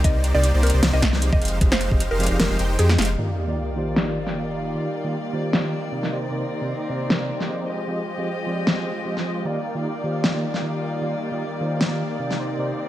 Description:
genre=future bass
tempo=153 BPM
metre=4/4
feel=swing 54% on 16ths, half-time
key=Eb major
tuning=A4 = 440 Hz
part: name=mallet-like synth pluck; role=melody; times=0.0-2.9 s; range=Ab4 to Eb5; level=-27 LUFS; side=equal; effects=chorus, vintage 12-bit sampler grit, sidechain pumping, tape echo
part: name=mellow tine electric piano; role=accompaniment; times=0.0-12.7 s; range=C3 to Eb5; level=-28 LUFS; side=right 1 dB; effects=sidechain pumping
part: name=supersaw chords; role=riff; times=0.0-12.9 s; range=Ab3 to G5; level=-28 LUFS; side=equal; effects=sidechain pumping, low-pass filter
part: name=saturated sub bass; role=bass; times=0.0-3.2 s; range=F1 to F2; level=-20 LUFS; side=equal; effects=sidechain pumping
part: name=electronic kick drum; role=drums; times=0.0-2.0 s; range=none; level=-19 LUFS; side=equal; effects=none
part: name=pop drum kit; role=drums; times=0.0-12.4 s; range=hi-hat, snare drum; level=-24 LUFS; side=equal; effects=overdrive, low-pass filter on hats, low-pass filter on snare, low-pass filter on room
part: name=rich chamber string section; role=sustained chords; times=3.2-12.9 s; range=Eb3 to Eb5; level=-33 LUFS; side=left 3 dB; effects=sidechain pumping
part: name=sub drop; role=sound effects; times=3.2-4.7 s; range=none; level=-29 LUFS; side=equal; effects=none
room=light reverb, digital ambience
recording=none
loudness=-20 LUFS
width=side -13 dB against mid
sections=0.0-3.2 A section; 3.2-12.9 B section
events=drop 0.0-3.2; impact 3.2-4.7; filter sweep on drum 3.2-12.9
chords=0.0 Cm9; 1.4 Fm9; 3.2 Ebmaj9; 6.1 Cm9; 7.7 Fm9; 9.5 Ebmaj9

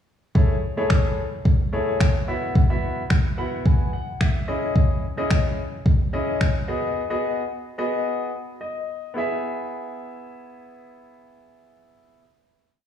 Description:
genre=dance-pop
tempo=109 BPM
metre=4/4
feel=straight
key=E major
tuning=A4 = 440 Hz
part: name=clear baby grand piano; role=accompaniment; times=0.3-12.2 s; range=A3 to B5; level=-26 LUFS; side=left 2 dB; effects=sidechain pumping, slapback echo
part: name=smooth R&B drum kit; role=drums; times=0.4-6.5 s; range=finger snaps, kick drum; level=-18 LUFS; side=equal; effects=none
room=small room ambience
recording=live gig heard through the venue's PA, recital hall reverb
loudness=-20 LUFS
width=side -9 dB against mid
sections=0.4-9.2 verse; 9.2-11.4 final chord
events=grand piano fill 3.1-4.8, 8.3-9.2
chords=0.4 Amaj7; 2.3 Esus2; 4.5 C#madd9; 6.7 B6; 9.2 E

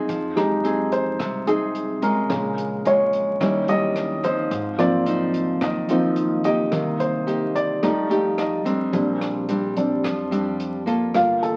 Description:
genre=bossa nova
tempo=108 BPM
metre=4/4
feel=straight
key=F dorian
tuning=A4 = 441 Hz
part: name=nylon-string guitar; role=accompaniment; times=0.0-11.6 s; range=Ab2 to A4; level=-27 LUFS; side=equal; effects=none
part: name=warm baby grand piano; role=accompaniment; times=0.0-11.6 s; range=Db3 to Bb5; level=-24 LUFS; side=equal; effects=none
part: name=upright bass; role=bass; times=0.0-11.6 s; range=G1 to F2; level=-38 LUFS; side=equal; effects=none
part: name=compact cocktail drum kit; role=drums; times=0.1-11.6 s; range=hi-hat, kick drum, rim click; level=-38 LUFS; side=equal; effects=none
room=wet studio reverb, RT60 0.9 s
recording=very old 78 rpm record, vinyl crackle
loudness=-22 LUFS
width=mono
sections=0.1-11.6 A section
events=grand piano solo 0.1-11.6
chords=0.1 Fm7; 2.3 Bbm7; 3.4 Eb7b9; 4.5 Ab6; 6.7 Cm7; 7.8 F9; 8.9 Bb69

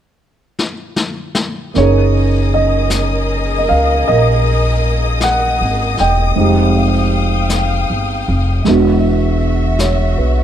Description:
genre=jazz ballad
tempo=52 BPM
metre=4/4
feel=swing 68% on 8ths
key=unclear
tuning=A4 = 441 Hz
part: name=jazz brush drum kit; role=drums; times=0.6-10.4 s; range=brushed snare drum, hi-hat, snare drum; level=-22 LUFS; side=left 3 dB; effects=none
part: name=dark grand piano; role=accompaniment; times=1.7-10.4 s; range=Ab3 to G5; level=-16 LUFS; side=right 3 dB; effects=none
part: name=warm symphonic string section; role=sustained chords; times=1.7-10.4 s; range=F#4 to Eb6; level=-20 LUFS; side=left 3 dB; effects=none
part: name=upright bass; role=bass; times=1.8-10.4 s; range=E1 to Db2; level=-15 LUFS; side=left 1 dB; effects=none
room=light reverb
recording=none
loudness=-12 LUFS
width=side -10 dB against mid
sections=0.0-1.8 A section; 1.8-10.4 B section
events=drum fill 0.6-1.8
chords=0.0 N.C.; 1.8 Gb69; 6.4 Fm9; 8.6 E9

